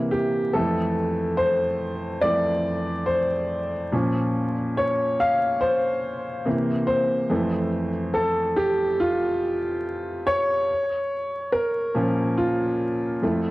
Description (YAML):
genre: hip hop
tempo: 71 BPM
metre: 4/4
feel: swing 58% on 16ths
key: F major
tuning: A4 = 440 Hz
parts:
  - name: clear upright piano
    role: solo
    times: 0.0-13.5 s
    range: F2 to F5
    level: -21 LUFS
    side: equal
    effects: low-pass filter
room: moderate plate reverb, RT60 3.3 s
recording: worn, warbling old tape, cassette tape, vinyl crackle, warbly pitch drift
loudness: -21 LUFS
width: side -19 dB against mid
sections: 0.0-13.5 A section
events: upright piano solo 0.0-13.5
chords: 0.0 C7; 0.5 Fmaj7; 3.9 Bbmadd9; 6.5 C7; 7.3 Fmaj7; 10.7 Bbm